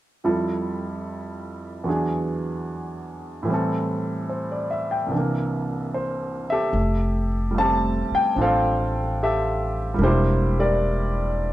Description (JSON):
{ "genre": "jazz ballad", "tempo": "74 BPM", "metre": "4/4", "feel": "swing 67% on 8ths", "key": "F major", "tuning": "A4 = 441 Hz", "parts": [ { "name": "clear baby grand piano", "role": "accompaniment", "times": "0.2-11.5 s", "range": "C2 to A5", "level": "-23 LUFS", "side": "equal", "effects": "none" }, { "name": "upright bass", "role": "bass", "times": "6.7-11.5 s", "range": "E1 to A1", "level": "-23 LUFS", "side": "equal", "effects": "none" } ], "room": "light reverb", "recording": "dry, close 1970s-style studio recording", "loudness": "-21 LUFS", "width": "side -14 dB against mid", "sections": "0.2-6.7 A section; 6.7-11.5 B section", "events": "none", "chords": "0.2 Fmaj7; 1.9 E7; 3.5 Am7; 5.1 C7; 6.7 Fmaj9; 10.0 Em7b5" }